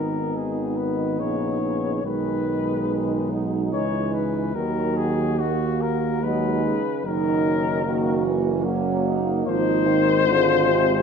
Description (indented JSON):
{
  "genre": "classical, hymn-like piece for brass band",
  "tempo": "72 BPM",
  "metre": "3/4",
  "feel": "rubato",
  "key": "G# minor",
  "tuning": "A4 = 440 Hz",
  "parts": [
    { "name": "warm flugelhorn", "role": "melody", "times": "0.0-11.0 s", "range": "F#4 to C#5", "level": "-25 LUFS", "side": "left 9 dB", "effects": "none" },
    { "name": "warm French horn section", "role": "second line", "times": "0.0-11.0 s", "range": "C#4 to F#4", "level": "-26 LUFS", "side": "right 7 dB", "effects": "none" },
    { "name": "mellow trombone section", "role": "accompaniment", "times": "0.0-11.0 s", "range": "F#3 to B3", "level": "-30 LUFS", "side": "left 4 dB", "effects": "none" },
    { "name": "warm euphonium", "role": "accompaniment", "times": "0.0-11.0 s", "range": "C3 to F#3", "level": "-28 LUFS", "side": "right 3 dB", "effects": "none" },
    { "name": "warm tuba", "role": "bass", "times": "0.0-11.0 s", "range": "F#1 to D#2", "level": "-27 LUFS", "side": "right 1 dB", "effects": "none" }
  ],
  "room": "moderate concert hall reverb, RT60 2.2 s",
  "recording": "none",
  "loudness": "-20 LUFS",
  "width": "side -6 dB against mid",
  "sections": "0.0-11.0 A section",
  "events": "none",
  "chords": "0.0 G#m; 2.0 G#m/B; 4.6 D#m; 7.0 D#m/F#; 9.5 Ab"
}